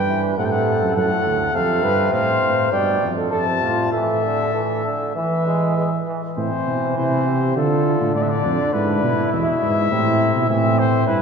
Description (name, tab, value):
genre	classical, imitative canzona for brass ensemble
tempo	102 BPM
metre	4/4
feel	straight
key	A minor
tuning	A4 = 439 Hz
part	clear trumpet	melody	0.0-11.2 s	A4 to A5	-23 LUFS	left 6 dB	none
part	mellow flugelhorn	second line	0.0-11.2 s	C4 to D5	-23 LUFS	right 3 dB	none
part	mellow tuba	bass	0.0-11.2 s	D2 to E3	-22 LUFS	right 1 dB	none
part	brilliant trombone	accompaniment	0.1-11.1 s	A2 to G#3	-24 LUFS	right 1 dB	none
room	wet church reverb, RT60 3.7 s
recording	heard from further back in the room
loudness	-17 LUFS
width	side -6 dB against mid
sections	0.0-6.4 A section; 6.4-11.2 B section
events	none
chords	0.4 F#dim; 1.5 F; 3.9 Esus4/A; 5.2 E; 6.4 Am (rootless); 7.6 Dm; 8.7 E/G#; 9.9 Am